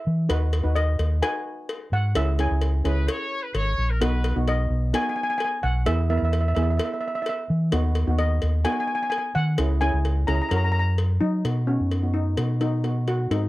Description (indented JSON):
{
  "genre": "calypso",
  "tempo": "129 BPM",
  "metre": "4/4",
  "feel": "straight",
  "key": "B major",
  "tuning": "A4 = 437 Hz",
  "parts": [
    { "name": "fingered electric bass", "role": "bass", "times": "0.1-13.5 s", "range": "G#1 to F#3", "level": "-22 LUFS", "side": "equal", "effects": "none" },
    { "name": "steel pan", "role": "accompaniment", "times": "0.3-13.5 s", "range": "G#3 to B4", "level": "-30 LUFS", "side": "right 2 dB", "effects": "none" },
    { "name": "cowbell", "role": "percussion", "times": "0.3-13.4 s", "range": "none", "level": "-32 LUFS", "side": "left 3 dB", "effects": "none" },
    { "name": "steel pan", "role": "melody", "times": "0.8-13.5 s", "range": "C#4 to A#5", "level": "-27 LUFS", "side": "left 1 dB", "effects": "none" },
    { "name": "clear horn section", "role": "second line", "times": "2.9-4.4 s", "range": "A#4 to C#5", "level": "-29 LUFS", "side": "left 1 dB", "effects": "none" }
  ],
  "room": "little or no reverb",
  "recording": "dry, close 1970s-style studio recording",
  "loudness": "-21 LUFS",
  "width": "side -18 dB against mid",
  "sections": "0.0-11.4 A section; 11.4-13.5 B section",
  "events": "none",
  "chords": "0.3 B6/D#; 2.2 C#m; 4.0 B; 5.9 E; 7.7 B/D#; 9.6 C#m; 10.5 F#; 11.4 B"
}